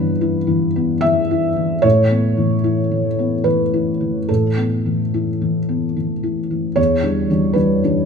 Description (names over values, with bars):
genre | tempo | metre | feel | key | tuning
neoclassical minimalist piano | 74 BPM | 3/4 | rubato | E dorian | A4 = 441 Hz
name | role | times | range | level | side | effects
felt-muted upright piano | solo | 0.0-8.1 s | E2 to E5 | -15 LUFS | left 1 dB | none
room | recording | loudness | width
moderate recital hall reverb, RT60 1.7 s | close, detailed microphones | -15 LUFS | side -6 dB against mid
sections
0.0-6.8 A section; 6.8-8.1 B section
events
none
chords
0.0 Em/G; 1.8 Aadd9; 6.8 Em7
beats
0.21 1.04 | 1.84 2.64 3.45 | 4.28 5.12 5.95 | 6.78 7.58